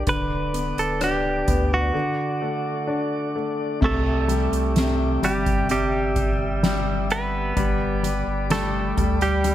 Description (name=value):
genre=pop ballad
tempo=64 BPM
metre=4/4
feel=straight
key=unclear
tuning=A4 = 440 Hz
part: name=direct-recorded clean electric guitar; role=melody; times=0.0-9.5 s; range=G3 to B4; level=-25 LUFS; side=right 2 dB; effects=none
part: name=clear concert grand piano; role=accompaniment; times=0.0-9.5 s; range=C3 to D4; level=-26 LUFS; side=left 3 dB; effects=none
part: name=mellow tonewheel organ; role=sustained chords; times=0.0-9.5 s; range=G4 to E6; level=-31 LUFS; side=equal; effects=slow rotary speaker
part: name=saturated sub bass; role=bass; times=0.0-9.5 s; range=D1 to D2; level=-26 LUFS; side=equal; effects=none
part: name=soft-mallet drum kit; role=drums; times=0.1-9.5 s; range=crash cymbal, hi-hat, kick drum, rim click, snare drum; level=-26 LUFS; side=equal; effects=none
room=small room ambience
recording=none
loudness=-20 LUFS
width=side -12 dB against mid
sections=0.0-3.8 A section; 3.8-9.5 B section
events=break 1.9-3.8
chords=0.1 D5; 1.9 D; 3.8 Cadd9; 7.6 G